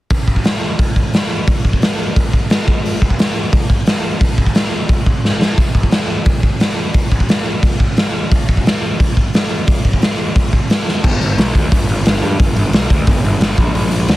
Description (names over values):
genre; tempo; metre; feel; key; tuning
punk rock; 176 BPM; 4/4; straight; unclear; A4 = 440 Hz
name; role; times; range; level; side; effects
raw garage drum kit; drums; 0.1-14.2 s; crash cymbal, hi-hat, kick drum, snare drum; -13 LUFS; equal; none
fuzz picked electric bass; bass; 11.0-14.2 s; G1 to G2; -17 LUFS; equal; overdrive
room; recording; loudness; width
little or no reverb; dense, heavily limited modern master; -12 LUFS; side -17 dB against mid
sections
0.1-11.0 A section; 11.0-14.2 B section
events
drum fill 5.2-5.6, 10.9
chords
none